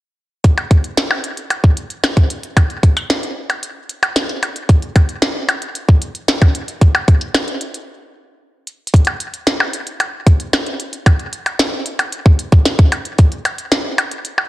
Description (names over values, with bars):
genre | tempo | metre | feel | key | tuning
IDM | 113 BPM | 4/4 | straight | none | none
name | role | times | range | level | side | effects
electronic kick drum | drums | 0.4-13.3 s | none | -10 LUFS | equal | none
glitchy drum kit | drums | 0.4-14.5 s | hi-hat, percussion blips, snare drum | -18 LUFS | equal | tape echo
room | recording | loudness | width
little or no reverb | dry, gritty hardware recording, cassette tape | -13 LUFS | side -17 dB against mid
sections
0.4-8.9 A section; 8.9-14.5 B section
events
stop 7.9-8.9; drum fill 8.7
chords
none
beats
| 0.44 0.97 1.50 2.04 | 2.57 3.10 3.63 4.16 | 4.69 5.22 5.75 6.28 | 6.82 7.35 7.88 8.41 | 8.94 9.47 10.00 10.53 | 11.06 11.59 12.12 12.66 | 13.19 13.72 14.25